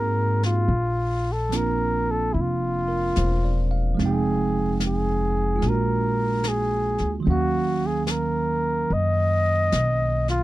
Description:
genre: jazz ballad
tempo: 73 BPM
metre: 4/4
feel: swing 69% on 8ths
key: unclear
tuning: A4 = 440 Hz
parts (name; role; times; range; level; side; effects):
- mellow flugelhorn; melody; 0.0-10.4 s; E4 to Eb5; -25 LUFS; left 1 dB; none
- bell-like tine electric piano; accompaniment; 0.0-10.4 s; Eb3 to G5; -27 LUFS; right 5 dB; none
- upright bass; bass; 0.0-10.4 s; E1 to Ab2; -25 LUFS; left 1 dB; none
- jazz brush drum kit; drums; 0.4-10.4 s; brushed snare drum, hi-hat, snare drum; -35 LUFS; left 3 dB; none
room: little or no reverb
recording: dry, close 1970s-style studio recording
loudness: -21 LUFS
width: side -16 dB against mid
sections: 0.7-10.4 A section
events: none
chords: 0.0 Ab9; 0.7 Bbadd9; 4.0 Fm9; 5.6 Bb7b13; 7.3 Ebm9

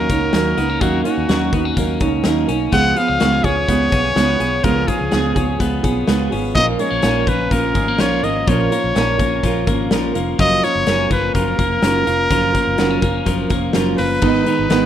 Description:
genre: jangly indie pop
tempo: 125 BPM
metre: 4/4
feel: straight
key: Eb minor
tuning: A4 = 442 Hz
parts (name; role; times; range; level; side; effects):
- bright trumpet; melody; 0.0-14.9 s; Gb4 to Gb5; -19 LUFS; equal; slapback echo
- fingerpicked steel-string acoustic guitar; accompaniment; 0.0-14.9 s; Ab2 to Cb5; -20 LUFS; right 6 dB; none
- twelve-string electric guitar; arpeggios; 0.0-14.9 s; Eb3 to Ab4; -23 LUFS; left 7 dB; slapback echo
- vintage muted fingered electric bass; bass; 0.0-14.9 s; F1 to Eb2; -24 LUFS; left 1 dB; none
- big rock drum kit; drums; 0.1-14.8 s; crash cymbal, hi-hat, kick drum, snare drum; -22 LUFS; left 1 dB; none
room: small room ambience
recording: rough home demo mix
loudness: -14 LUFS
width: side -10 dB against mid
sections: 0.0-14.2 A section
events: none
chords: 0.0 Ebm7; 2.7 Db7; 6.6 Bbm; 10.4 Gbmaj7; 14.2 Abm

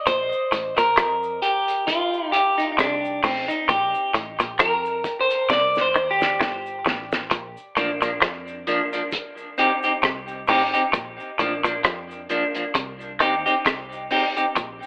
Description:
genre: roots reggae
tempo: 66 BPM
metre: 4/4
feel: swing 56% on 16ths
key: Bb major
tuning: A4 = 441 Hz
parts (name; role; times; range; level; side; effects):
- clean electric guitar; accompaniment; 0.0-14.5 s; F3 to D5; -24 LUFS; equal; spring reverb, tape echo
- clean electric guitar; riff; 0.1-14.7 s; G2 to F3; -26 LUFS; equal; none
- vintage muted fingered electric bass; bass; 0.1-14.8 s; G1 to F2; -44 LUFS; equal; none
- cloth-damped thuddy drum kit; drums; 0.1-14.8 s; hi-hat, kick drum, rim click, snare drum; -28 LUFS; equal; none
- cabasa; percussion; 0.1-14.9 s; none; -54 LUFS; equal; none
room: wet small room reverb, RT60 0.5 s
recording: telephone sound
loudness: -22 LUFS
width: mono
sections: 0.0-7.3 A section; 7.3-14.9 B section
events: clean electric guitar solo 0.0-7.3; drum fill 5.5-7.3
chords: 0.1 Bb5; 1.9 Am7b5; 3.7 Bb5; 5.5 Cm; 7.3 Bb; 9.1 Cm; 10.9 Bb; 12.8 Cm

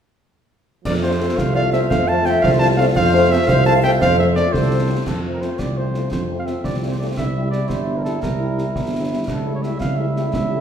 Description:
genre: military-style march for wind band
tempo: 114 BPM (dotted quarters)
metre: 6/8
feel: straight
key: F major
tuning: A4 = 440 Hz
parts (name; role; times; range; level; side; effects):
- clear trombone section; sustained chords; 0.8-10.6 s; F3 to E4; -26 LUFS; right 3 dB; none
- mellow cornet; melody; 0.9-10.6 s; A4 to A5; -23 LUFS; equal; none
- mellow hollow large flute ensemble; second line; 0.9-5.0 s; A4 to F5; -22 LUFS; left 1 dB; none
- mellow tuba; bass; 0.9-10.6 s; G1 to F2; -20 LUFS; right 1 dB; none
- concert snare drum, clash cymbals and concert bass drum; drums; 0.9-10.5 s; none; -26 LUFS; equal; none
- mellow French horn section; accompaniment; 1.0-10.6 s; G3 to G4; -26 LUFS; left 3 dB; none
room: wet recital hall reverb, RT60 1.4 s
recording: recorded in a church or concert hall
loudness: -16 LUFS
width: side -8 dB against mid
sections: 0.9-5.1 A section; 5.1-10.6 B section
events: none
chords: 0.9 F; 7.2 C7; 9.3 A7/C#

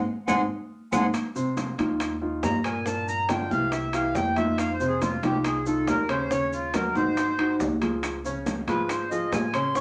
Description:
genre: Afro-Cuban jazz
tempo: 139 BPM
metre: 4/4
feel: straight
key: unclear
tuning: A4 = 437 Hz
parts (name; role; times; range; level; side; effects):
- accordion; melody; 0.3-9.8 s; F4 to C#6; -30 LUFS; equal; none
- warm baby grand piano; accompaniment; 0.3-9.8 s; Bb2 to Db5; -30 LUFS; equal; none
- upright bass; bass; 0.3-9.8 s; Ab1 to G2; -39 LUFS; equal; none
- bongos; percussion; 0.3-9.8 s; none; -39 LUFS; equal; none
- claves; percussion; 0.3-1.0, 8.0-9.8 s; none; -41 LUFS; equal; none
- congas; percussion; 0.3-9.8 s; none; -34 LUFS; equal; none
- maracas; percussion; 0.3-9.8 s; none; -47 LUFS; equal; none
- timbales; percussion; 0.3-9.8 s; none; -37 LUFS; equal; none
room: wet studio reverb, RT60 0.6 s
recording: none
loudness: -26 LUFS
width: mono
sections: 0.0-1.1 A section; 1.1-9.8 B section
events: band accent 0.0-1.1; drum fill 0.7-1.1; accordion solo 1.1-9.8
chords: 0.0 Ab7; 1.1 Eb69; 2.9 Gm7; 3.7 C; 4.6 F5; 6.3 Ebm7; 7.2 Ab6; 8.0 Db

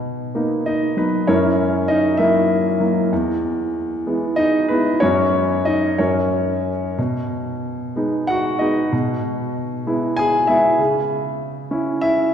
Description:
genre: classical, lyrical solo piano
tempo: 64 BPM (dotted quarters)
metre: 6/8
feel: rubato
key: B major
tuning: A4 = 440 Hz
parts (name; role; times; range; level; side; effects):
- warm grand piano; solo; 0.0-12.3 s; E2 to G#5; -17 LUFS; equal; none
room: wet church reverb, RT60 2.9 s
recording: recorded in a church or concert hall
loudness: -17 LUFS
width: side -8 dB against mid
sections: 0.0-12.3 A section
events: none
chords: 0.0 Bmaj7; 1.3 F#7; 3.1 E; 5.0 F#5; 6.0 F#; 7.0 B6; 8.9 E/B; 10.8 C#m

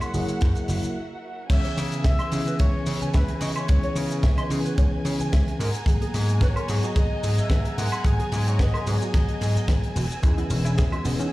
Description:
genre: nu-disco, nu disco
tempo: 110 BPM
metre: 4/4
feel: swing 53% on 16ths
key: unclear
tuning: A4 = 440 Hz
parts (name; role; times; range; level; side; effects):
- mellow trumpet section; melody; 0.0-9.9 s; B4 to G#5; -35 LUFS; left 1 dB; dub echo
- mellow tine electric piano; accompaniment; 0.0-11.3 s; E3 to G#4; -30 LUFS; equal; fast stereo tremolo, sidechain pumping, tape echo
- dark symphonic violin section; sustained chords; 0.0-11.3 s; C#4 to E6; -36 LUFS; right 1 dB; sidechain pumping
- tight funk drum kit; drums; 0.0-11.3 s; crash cymbal, hi-hat, ride cymbal, shaker, snare drum, woodblock; -33 LUFS; equal; none
- vintage slap bass; bass; 0.1-11.1 s; E1 to C#3; -25 LUFS; equal; none
- kick drum; drums; 0.4-10.9 s; none; -22 LUFS; equal; none
- mellow electric guitar; riff; 1.5-11.3 s; D#4 to G#5; -36 LUFS; right 2 dB; ensemble chorus, tape echo
- analog pluck; arpeggios; 10.2-11.3 s; G#3 to G#4; -35 LUFS; left 2 dB; chorus, sidechain pumping, dub echo
room: small room reverb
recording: played on a big sound system in a bare room, stone room reverb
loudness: -21 LUFS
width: side -18 dB against mid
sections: 0.0-1.5 A section; 1.5-11.3 B section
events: break 1.0-1.5; drop 1.5-11.3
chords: 0.0 F#9; 1.5 C#m7; 5.6 G#m9; 10.0 E6

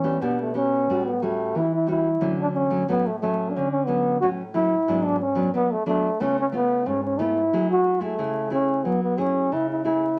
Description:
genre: samba and choro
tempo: 90 BPM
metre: 4/4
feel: straight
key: F# minor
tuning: A4 = 436 Hz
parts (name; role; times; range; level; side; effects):
- breathy trombone; melody; 0.0-10.2 s; A3 to F#4; -24 LUFS; equal; none
- nylon-string guitar; accompaniment; 0.0-10.1 s; G#2 to G#4; -29 LUFS; equal; none
room: moderate studio reverb, RT60 0.5 s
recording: vinyl crackle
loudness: -23 LUFS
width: mono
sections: 0.0-10.2 A section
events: none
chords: 0.0 Em7; 0.9 A6; 2.2 Dmaj7; 4.9 G#m7b5; 6.2 C#7b13; 7.5 F#m9

